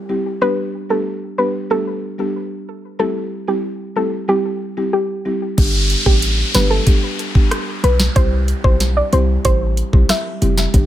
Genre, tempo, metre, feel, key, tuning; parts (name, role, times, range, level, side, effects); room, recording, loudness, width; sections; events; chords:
dancehall; 93 BPM; 4/4; straight; C major; A4 = 440 Hz
soft round pluck; melody; 0.0-10.6 s; G4 to E5; -21 LUFS; equal; chorus, ping-pong delay
downlifter; sound effects; 0.0-0.4, 5.6-10.7 s; -25 LUFS; equal
buzzing marimba with soft mallets; accompaniment; 0.1-10.9 s; G3 to G4; -22 LUFS; equal
hard-hitting 808-style bass; bass; 5.6-10.9 s; F1 to C2; -17 LUFS; equal
afro-pop drum kit; drums; 5.6-10.9 s; crash cymbal, hi-hat, kick drum, rim click, snare drum; -15 LUFS; equal
little or no reverb; -15 LUFS; side -12 dB against mid
0.0-5.6 A section; 5.6-10.9 B section
0.4 G; 3.0 C; 5.6 G; 8.2 C